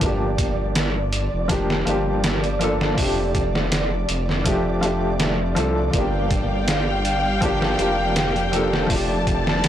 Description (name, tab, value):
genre	trip hop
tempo	81 BPM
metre	4/4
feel	swing 54% on 16ths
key	G minor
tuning	A4 = 440 Hz
part	warm upright piano	accompaniment	0.0-9.7 s	F3 to A4	-24 LUFS	left 1 dB	tremolo, tape echo
part	dark detuned saw bass	bass	0.0-9.7 s	F1 to C2	-25 LUFS	equal	transformer saturation
part	trip hop sampler-style drum kit	drums	0.0-9.7 s	hi-hat, kick drum, snare drum	-24 LUFS	equal	none
part	flickering grainy texture	texture	0.0-9.7 s	D5	-30 LUFS	right 2 dB	built-in reverb
part	warm studio string section	sustained chords	5.9-9.7 s	G4 to A5	-24 LUFS	left 2 dB	vintage 12-bit sampler grit
room	little or no reverb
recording	blown-out, overdriven recording, overdrive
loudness	-19 LUFS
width	side -11 dB against mid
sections	0.0-9.7 A section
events	none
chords	0.0 Gm7; 3.0 F69; 5.9 Gm7; 8.9 F69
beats	| 0.01 0.75 1.49 2.23 | 2.98 3.72 4.46 5.20 | 5.94 6.68 7.42 8.16 | 8.90 9.64